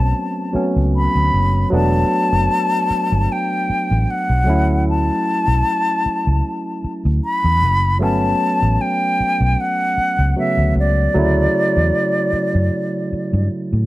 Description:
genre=lush 1970s-style soul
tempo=76 BPM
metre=4/4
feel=swing 54% on 16ths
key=D major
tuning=A4 = 440 Hz
part: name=mellow silver concert flute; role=melody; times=0.0-13.5 s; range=D5 to B5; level=-19 LUFS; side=left 1 dB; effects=none
part: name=barky tine electric piano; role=accompaniment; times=0.0-13.9 s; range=C#3 to E4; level=-21 LUFS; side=right 1 dB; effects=none
part: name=vintage muted fingered electric bass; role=bass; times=0.0-13.9 s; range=E1 to A2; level=-17 LUFS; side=equal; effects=none
room=light reverb, studio ambience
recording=none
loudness=-15 LUFS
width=side -17 dB against mid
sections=0.0-13.9 A section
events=none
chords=0.0 Gmaj9#11 (rootless); 1.7 E7sus4 (rootless); 4.5 Dmaj7; 8.0 Gmaj9#11; 11.2 Dmaj9

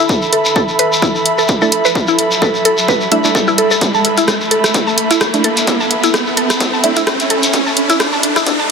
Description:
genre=minimal techno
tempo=129 BPM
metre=4/4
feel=swing 55% on 16ths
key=unclear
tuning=A4 = 440 Hz
part: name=mallet-like synth pluck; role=riff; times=0.0-8.6 s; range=E4 to A5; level=-17 LUFS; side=left 1 dB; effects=chorus, phaser, sidechain pumping, ping-pong delay
part: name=riser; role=sound effects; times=0.0-8.7 s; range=none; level=-19 LUFS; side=right 1 dB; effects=none
part: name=airy breathy pad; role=texture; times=0.0-8.7 s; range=A4 to B5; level=-18 LUFS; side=right 2 dB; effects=chorus, sidechain pumping
part: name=electronic kick drum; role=drums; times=0.1-8.6 s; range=none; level=-18 LUFS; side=equal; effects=high-pass filter on kick
part: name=shekere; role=percussion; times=0.1-8.7 s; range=none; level=-19 LUFS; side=left 2 dB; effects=none
part: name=punchy analog drum machine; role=drums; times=0.3-8.6 s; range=hi-hat, rim click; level=-17 LUFS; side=equal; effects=soft clipping on snare
part: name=filtered dub chord stab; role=stabs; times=1.6-7.0 s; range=A3 to E4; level=-20 LUFS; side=right 4 dB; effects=chorus, dub echo
room=light reverb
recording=dense, heavily limited modern master, high-pass filter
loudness=-11 LUFS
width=side -5 dB against mid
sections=0.0-8.7 A section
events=build-up 0.0-8.7; riser 0.0-8.7; filter sweep on synth stab 0.0-8.7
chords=0.0 A5

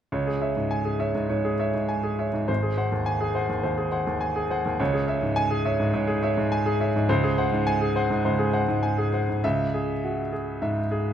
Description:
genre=classical, virtuoso piano study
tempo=103 BPM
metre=4/4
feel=rubato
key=C# minor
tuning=A4 = 441 Hz
part: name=clear baby grand piano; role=solo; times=0.1-11.1 s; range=G#1 to G#5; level=-22 LUFS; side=equal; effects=none
room=wet recital hall reverb, RT60 1.4 s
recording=none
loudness=-22 LUFS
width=side -9 dB against mid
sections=0.1-9.4 A section; 9.4-11.1 B section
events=none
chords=0.1 C#m; 2.5 G#7; 4.8 C#m; 7.1 G#7/C#; 9.4 C#m

